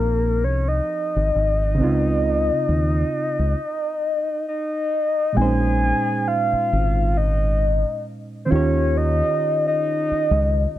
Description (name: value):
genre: R&B, neo-soul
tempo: 67 BPM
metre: 4/4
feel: swing 57% on 16ths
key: Bb dorian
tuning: A4 = 435 Hz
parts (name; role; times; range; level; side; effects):
- soft octave-layered synth lead; melody; 0.0-10.8 s; Bb4 to Ab5; -22 LUFS; left 1 dB; chorus, phaser
- reed electric piano; accompaniment; 0.0-10.8 s; Bb2 to Db5; -25 LUFS; right 3 dB; overdrive
- deep dub fingered electric bass; bass; 0.0-10.8 s; Ab1 to Eb2; -20 LUFS; equal; none
room: little or no reverb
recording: dry, close 1970s-style studio recording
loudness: -18 LUFS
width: side -13 dB against mid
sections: 0.0-5.4 A section; 5.4-10.8 B section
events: stop 3.6-5.4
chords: 0.0 Fm7; 1.8 Dbmaj9; 4.5 N.C.; 5.4 Bbm11; 8.5 Eb9